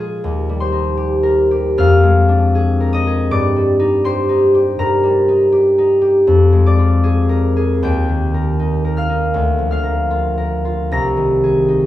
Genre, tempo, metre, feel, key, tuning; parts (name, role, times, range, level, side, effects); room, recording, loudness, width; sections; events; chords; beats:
classical, solo harp piece; 80 BPM; 4/4; rubato; Eb major; A4 = 440 Hz
concert harp; solo; 0.0-11.9 s; C2 to Bb6; -12 LUFS; left 1 dB
moderate large studio reverb, RT60 1.1 s; studio reverb; -13 LUFS; side -14 dB against mid
0.0-11.9 A section
0.2 Eb; 1.8 Bb7/F; 3.3 Eb/G; 6.3 Bb7/F; 7.8 Eb; 9.3 Bb/D; 10.9 Ab/C
| 0.23 0.97 1.78 2.55 | 3.32 4.06 4.80 5.55 | 6.29 7.04 7.84 8.60 | 9.35 10.11 10.92 11.67